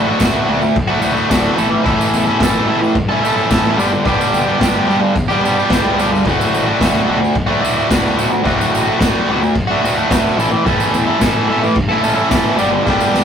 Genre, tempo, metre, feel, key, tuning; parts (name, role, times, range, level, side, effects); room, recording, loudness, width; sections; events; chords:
garage rock duo or trio; 109 BPM; 4/4; straight; D major; A4 = 440 Hz
overdriven electric guitar; riff; 0.0-13.2 s; D2 to A4; -14 LUFS; equal
fuzz picked electric bass; bass; 0.0-13.2 s; D1 to A2; -25 LUFS; equal; overdrive
raw garage drum kit; drums; 0.2-13.2 s; crash cymbal, kick drum, snare drum; -19 LUFS; left 1 dB
tambourine; percussion; 0.2-13.2 s; -32 LUFS; right 5 dB
moderate small room reverb, RT60 0.5 s; rough rehearsal-room recording, tube saturation; -12 LUFS; side -8 dB against mid
0.0-13.2 A section
drum fill 12.9-13.2
0.0 D; 1.6 A; 3.8 G; 6.2 D; 10.4 A; 12.6 G